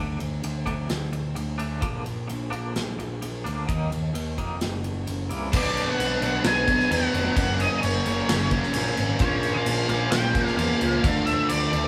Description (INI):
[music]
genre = quiet-loud alternative rock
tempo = 130 BPM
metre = 4/4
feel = straight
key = unclear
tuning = A4 = 444 Hz
[part]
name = twangy electric guitar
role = arpeggios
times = 0.0-5.5 s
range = C#3 to E4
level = -37 LUFS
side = equal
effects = tremolo
[part]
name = fuzz picked electric bass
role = bass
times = 0.0-11.9 s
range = F1 to F2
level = -31 LUFS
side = equal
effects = overdrive
[part]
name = big rock drum kit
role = drums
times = 0.2-11.8 s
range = crash cymbal, kick drum, ride cymbal, snare drum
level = -31 LUFS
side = equal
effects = none
[part]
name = overdriven electric guitar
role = riff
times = 5.5-11.9 s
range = F#2 to D4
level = -30 LUFS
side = equal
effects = none
[part]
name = thick fuzz guitar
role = riff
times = 5.5-11.9 s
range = F#2 to D4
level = -32 LUFS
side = equal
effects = distortion
[part]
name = tight distorted guitar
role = riff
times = 5.5-11.9 s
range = F#2 to D4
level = -35 LUFS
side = equal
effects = distortion
[part]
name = octave-fuzz lead guitar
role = melody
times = 5.6-11.9 s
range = C#5 to Ab5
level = -29 LUFS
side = equal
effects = distortion
[sound]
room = moderate stone room reverb, RT60 1.2 s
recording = band playing live in one room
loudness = -25 LUFS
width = mono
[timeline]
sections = 0.0-5.5 A section; 5.5-11.9 B section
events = none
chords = 0.0 D; 1.8 Bb; 3.7 Ebm; 4.6 F#7; 5.5 Bm; 7.4 F#; 9.2 Bbm; 11.0 Dm